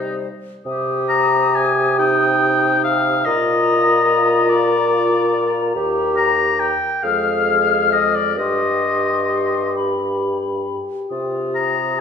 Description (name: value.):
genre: classical, slow romantic movement for wind quintet.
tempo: 42-49 BPM (dotted quarters).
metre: 6/8.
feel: rubato.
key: C minor.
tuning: A4 = 440 Hz.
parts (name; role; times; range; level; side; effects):
hollow concert flute; melody; 0.0-12.0 s; C5 to F6; -23 LUFS; left 9 dB; none.
clear oboe; second line; 0.0-12.0 s; Eb4 to Bb5; -18 LUFS; left 4 dB; none.
mellow French horn; accompaniment; 0.0-12.0 s; G3 to G4; -24 LUFS; left 1 dB; none.
dark bassoon; bass; 0.0-12.0 s; Eb2 to C3; -22 LUFS; right 2 dB; none.
clear clarinet; accompaniment; 0.7-12.0 s; Eb4 to Ab4; -26 LUFS; right 6 dB; none.
room: wet recital hall reverb, RT60 1.4 s.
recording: minimal, uncompressed stereo recording.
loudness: -15 LUFS.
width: side -7 dB against mid.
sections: 0.7-12.0 A section.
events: none.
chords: 0.0 Cm; 3.3 Bb; 5.7 Eb; 7.0 Fm; 8.4 Cm/G; 11.1 Cm.